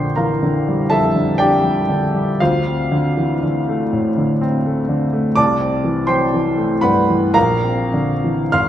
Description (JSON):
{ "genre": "classical, impressionist solo piano", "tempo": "48-64 BPM", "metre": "3/4", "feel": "rubato", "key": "unclear", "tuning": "A4 = 439 Hz", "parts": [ { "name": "clear grand piano", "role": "solo", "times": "0.0-8.7 s", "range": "G#1 to E#6", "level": "-15 LUFS", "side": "equal", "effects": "none" } ], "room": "wet recital hall reverb, RT60 1.6 s", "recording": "dark, warm production", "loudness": "-15 LUFS", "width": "side -11 dB against mid", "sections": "0.0-8.7 A section", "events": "none", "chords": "0.0 Bb6; 2.4 Dm7; 5.4 C69; 7.4 Bbadd9", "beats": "0.40 1.38 | 2.40 3.42 4.43 | 5.38 6.34 7.35 | 8.53" }